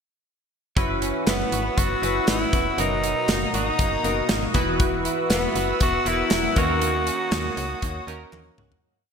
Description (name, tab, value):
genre	1980s-style pop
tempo	119 BPM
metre	4/4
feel	swing 55% on 16ths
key	unclear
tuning	A4 = 440 Hz
part	chorused retro synth keys	accompaniment	0.8-8.9 s	B2 to B4	-28 LUFS	equal	none
part	phased analog pad	sustained chords	1.0-8.8 s	F#4 to E6	-30 LUFS	left 1 dB	phaser, chorus
part	direct-recorded clean electric guitar	riff	0.8-9.1 s	E3 to F#4	-32 LUFS	right 4 dB	ensemble chorus, digital delay
part	slap-like FM bass	bass	0.8-8.8 s	E1 to D#2	-30 LUFS	equal	none
part	modern studio drum kit	drums	0.8-8.8 s	hi-hat, kick drum, snare drum, toms	-25 LUFS	equal	gated reverb
part	raspy tenor saxophone	melody	1.3-8.6 s	B3 to F#4	-26 LUFS	left 1 dB	digital delay
part	group handclap	percussion	1.3-8.5 s	none	barely audible	none	none
room	moderate lush hall reverb, RT60 2.2 s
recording	bright 1980s-style digital production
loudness	-20 LUFS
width	side -6 dB against mid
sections	0.8-8.8 pre-chorus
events	fade-out 6.8-8.8; drum fill 8.3-8.8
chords	0.8 F#7sus4; 2.8 Bmaj7/F#; 4.5 Esus2; 6.6 D#m7